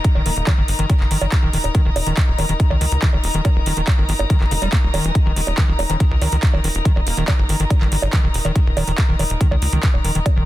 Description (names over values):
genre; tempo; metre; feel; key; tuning
psychedelic trance; 141 BPM; 4/4; straight; Eb major; A4 = 441 Hz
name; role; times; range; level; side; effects
big-room dance drum kit; drums; 0.0-10.3 s; bongos, handclaps, hi-hat; -25 LUFS; right 3 dB; none
electronic kick drum; drums; 0.0-10.3 s; none; -16 LUFS; equal; none
downlifter; sound effects; 0.0-1.7 s; none; -44 LUFS; right 1 dB; none
warm chamber string section; texture; 0.0-10.5 s; Eb4 to Bb5; -26 LUFS; left 2 dB; sidechain pumping
overdriven acid bass; riff; 0.2-10.4 s; Db3 to Bb3; -26 LUFS; left 1 dB; auto-pan, cassette tape, sidechain pumping, ping-pong delay
tight sequencer bass; bass; 0.2-10.4 s; Eb1 to Db2; -21 LUFS; equal; none
resonant blip pluck; second line; 0.3-0.4, 5.9-8.4 s; G3 to Db4; -37 LUFS; right 4 dB; none
room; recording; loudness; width
little or no reverb; dense, heavily limited modern master; -15 LUFS; side -15 dB against mid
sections
0.0-10.5 A section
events
none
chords
0.0 Eb5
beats
| 0.04 0.47 0.90 1.32 | 1.75 2.17 2.60 3.02 | 3.45 3.88 4.30 4.73 | 5.15 5.58 6.00 6.43 | 6.85 7.28 7.70 8.13 | 8.56 8.98 9.41 9.83 | 10.26